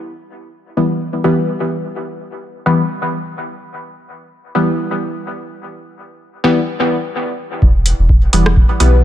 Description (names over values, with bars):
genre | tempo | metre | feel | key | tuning
dub techno | 127 BPM | 4/4 | swing 56% on 16ths | E minor | A4 = 440 Hz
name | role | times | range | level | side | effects
filtered dub chord stab | stabs | 0.8-9.0 s | E3 to B3 | -17 LUFS | left 1 dB | chorus, phaser, sidechain pumping, dub echo
soft dub sub bass | bass | 7.6-9.0 s | E1 to B1 | -12 LUFS | equal | sidechain pumping
electronic kick drum | drums | 7.6-8.7 s | none | -12 LUFS | equal | none
booming analog drum machine | drums | 7.9-8.9 s | hi-hat, rim click | -19 LUFS | equal | none
room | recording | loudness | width
light reverb | none | -13 LUFS | side -12 dB against mid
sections
0.0-7.6 A section; 7.6-9.0 B section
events
none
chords
0.0 Em